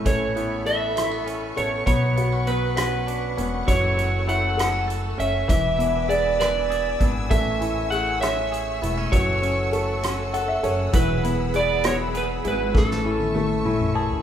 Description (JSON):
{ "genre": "six-eight pop ballad", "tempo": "66 BPM (dotted quarters)", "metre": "6/8", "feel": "straight", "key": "A major", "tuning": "A4 = 439 Hz", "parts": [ { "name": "clear baby grand piano", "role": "accompaniment", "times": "0.0-14.2 s", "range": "E3 to A5", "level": "-27 LUFS", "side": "left 3 dB", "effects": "none" }, { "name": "warm studio string section", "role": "sustained chords", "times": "0.0-14.2 s", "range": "A3 to E6", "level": "-32 LUFS", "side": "left 1 dB", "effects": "none" }, { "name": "direct-recorded clean electric guitar", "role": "arpeggios", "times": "0.0-14.2 s", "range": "E3 to A4", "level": "-34 LUFS", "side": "right 6 dB", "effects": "none" }, { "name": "upright bass", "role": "bass", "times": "0.0-14.2 s", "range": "E1 to B1", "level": "-28 LUFS", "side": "equal", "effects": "none" }, { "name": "electric slide guitar", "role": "melody", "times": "0.1-13.9 s", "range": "A4 to F#5", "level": "-24 LUFS", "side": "right 2 dB", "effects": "none" }, { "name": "soft-mallet drum kit", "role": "drums", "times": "0.1-14.2 s", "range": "hi-hat, kick drum, rim click, snare drum, toms", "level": "-25 LUFS", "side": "equal", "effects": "none" } ], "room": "moderate recital hall reverb, RT60 1.8 s", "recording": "recorded in a church or concert hall", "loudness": "-20 LUFS", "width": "side -9 dB against mid", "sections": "0.1-14.2 A section", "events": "grand piano fill 10.0-10.9, 13.7-14.2; drum fill 12.8-14.2", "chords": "0.1 Aadd9; 1.9 Bmadd9; 3.7 F#m7; 5.5 E7; 7.3 Amaj7; 9.1 F#m7; 10.9 Eadd9; 12.8 Amaj7" }